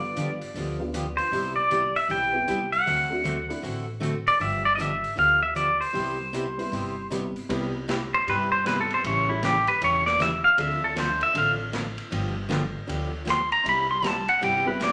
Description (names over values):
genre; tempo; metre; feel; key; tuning
country, western swing; 156 BPM; 4/4; swing 64% on 8ths; C major; A4 = 441 Hz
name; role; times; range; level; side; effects
pedal steel guitar; melody; 0.0-14.9 s; E4 to C6; -25 LUFS; equal; none
honky-tonk upright piano; accompaniment; 0.0-3.6, 6.6-11.6, 14.7-14.8 s; G3 to A4; -37 LUFS; equal; none
upright bass; bass; 0.0-14.9 s; E1 to G2; -38 LUFS; equal; none
picked steel-string acoustic guitar; accompaniment; 0.2-14.9 s; C3 to A4; -34 LUFS; equal; none
vintage drum kit; drums; 0.2-14.9 s; hi-hat, ride cymbal, snare drum; -38 LUFS; equal; none
room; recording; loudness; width
wet large studio reverb, RT60 0.8 s; none; -25 LUFS; mono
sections
0.0-7.5 A section; 7.5-14.9 B section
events
pedal steel guitar solo 7.5-14.9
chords
0.0 G7; 1.3 Cmaj7; 2.9 D7; 4.4 G7; 6.0 Cmaj7; 9.0 A7; 10.6 Dm7; 12.1 G7; 13.6 Cmaj7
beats
0.15 0.54 0.93 | 1.31 1.70 2.09 2.47 | 2.86 3.25 3.63 4.02 | 4.41 4.79 5.18 5.57 | 5.95 6.34 6.72 7.11 | 7.49 7.88 8.26 8.65 | 9.03 9.42 9.80 10.19 | 10.57 10.96 11.34 11.73 | 12.11 12.49 12.88 13.26 | 13.65 14.03 14.41 14.80